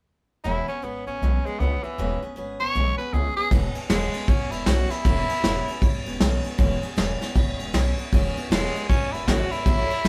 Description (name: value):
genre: rockabilly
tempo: 156 BPM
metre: 4/4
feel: swing 62% on 8ths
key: E major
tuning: A4 = 440 Hz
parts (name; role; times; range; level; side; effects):
- raspy tenor saxophone; melody; 0.4-6.0, 8.5-10.1 s; E3 to C#5; -30 LUFS; equal; none
- picked steel-string acoustic guitar; accompaniment; 0.4-10.1 s; E3 to C#5; -34 LUFS; equal; none
- upright bass; bass; 0.4-10.1 s; E1 to C#2; -29 LUFS; equal; none
- soft brush drum kit; drums; 3.5-10.1 s; crash cymbal, kick drum, ride cymbal, snare drum; -25 LUFS; equal; none
room: light reverb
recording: band playing live in one room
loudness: -24 LUFS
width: mono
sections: 0.4-3.5 A section; 3.5-10.1 B section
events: none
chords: 0.4 E6